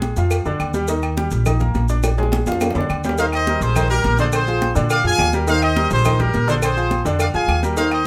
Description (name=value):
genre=latin, salsa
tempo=209 BPM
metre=4/4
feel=straight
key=Eb major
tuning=A4 = 444 Hz
part: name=bright upright piano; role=accompaniment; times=0.0-8.0 s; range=D3 to Eb6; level=-25 LUFS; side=equal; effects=none
part: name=upright bass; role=bass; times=0.0-8.1 s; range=Bb1 to Bb2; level=-23 LUFS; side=equal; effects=none
part: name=agogo bells and timbales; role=percussion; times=0.0-8.1 s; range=none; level=-31 LUFS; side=equal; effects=none
part: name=congas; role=percussion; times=0.0-8.1 s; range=none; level=-30 LUFS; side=equal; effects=none
part: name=cowbell and bongos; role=percussion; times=0.0-7.9 s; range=none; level=-31 LUFS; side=equal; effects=none
part: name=maracas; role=percussion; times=0.0-8.1 s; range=none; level=-38 LUFS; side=equal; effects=none
part: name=claves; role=percussion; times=0.3-8.1 s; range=none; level=-34 LUFS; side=equal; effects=none
part: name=bright trumpet section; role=melody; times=3.2-8.1 s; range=G4 to Ab5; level=-22 LUFS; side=equal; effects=none
room=moderate studio reverb, RT60 0.6 s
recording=none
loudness=-18 LUFS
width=mono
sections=0.0-3.2 A section; 3.2-8.1 B section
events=drum fill 2.0-3.2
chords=0.0 Bb7; 0.9 Eb; 2.0 Bb7; 3.2 Eb6; 4.3 Bb9; 5.5 Eb6; 6.6 Bb9